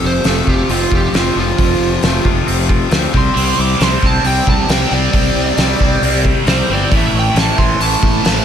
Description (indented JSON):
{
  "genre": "quiet-loud alternative rock",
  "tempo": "135 BPM",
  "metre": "4/4",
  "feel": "straight",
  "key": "unclear",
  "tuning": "A4 = 439 Hz",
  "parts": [
    { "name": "fuzz lead guitar", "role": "melody", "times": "0.0-8.4 s", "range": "F4 to D6", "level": "-19 LUFS", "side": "right 4 dB", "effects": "distortion, slapback echo, digital delay" },
    { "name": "twangy electric guitar", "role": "arpeggios", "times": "0.0-3.4 s", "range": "F2 to F4", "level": "-22 LUFS", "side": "right 4 dB", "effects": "slapback echo" },
    { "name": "cranked stack guitar", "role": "riff", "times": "0.0-8.4 s", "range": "F2 to C4", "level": "-19 LUFS", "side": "left 11 dB", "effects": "overdrive" },
    { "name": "fuzz fingered electric bass", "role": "bass", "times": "0.0-8.4 s", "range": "F1 to D2", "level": "-18 LUFS", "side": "equal", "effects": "overdrive" },
    { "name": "loose indie drum kit", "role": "drums", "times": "0.2-8.4 s", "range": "hi-hat, kick drum, snare drum", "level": "-16 LUFS", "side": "equal", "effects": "none" },
    { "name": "cranked stack guitar", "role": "riff", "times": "3.3-8.4 s", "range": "A2 to C4", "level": "-19 LUFS", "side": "right 10 dB", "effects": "overdrive, phaser, slapback echo" }
  ],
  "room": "moderate recital hall reverb, RT60 1.4 s, small room ambience",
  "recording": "big arena sound, faint mains hum",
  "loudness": "-11 LUFS",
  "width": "side -8 dB against mid",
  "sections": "0.0-8.4 A section",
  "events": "lead electric guitar solo 0.0-8.4",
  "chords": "0.0 F; 3.1 Csus2; 6.9 A5",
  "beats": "0.25 0.69 1.14 | 1.58 2.03 2.47 2.92 | 3.36 3.81 4.25 4.69 | 5.14 5.58 6.02 6.47 | 6.91 7.35 7.80 8.24"
}